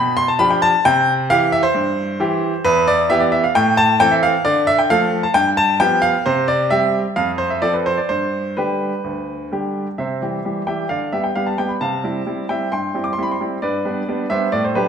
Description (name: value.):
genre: classical-period piano sonatina.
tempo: 132 BPM.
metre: 4/4.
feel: straight.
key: C major.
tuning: A4 = 442 Hz.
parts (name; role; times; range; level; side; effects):
clear baby grand piano; solo; 0.0-14.9 s; D2 to D6; -16 LUFS; equal; none.
room: wet recital hall reverb, RT60 1.4 s.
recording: none.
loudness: -16 LUFS.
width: side -7 dB against mid.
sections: 0.0-10.0 A section; 10.0-14.9 B section.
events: none.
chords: 0.0 G7/B; 0.9 C; 2.7 Em; 3.6 Am; 4.5 Dm; 5.4 G7; 6.3 C; 7.2 F; 8.1 G; 10.0 C; 10.9 G/D; 11.8 C; 13.6 G.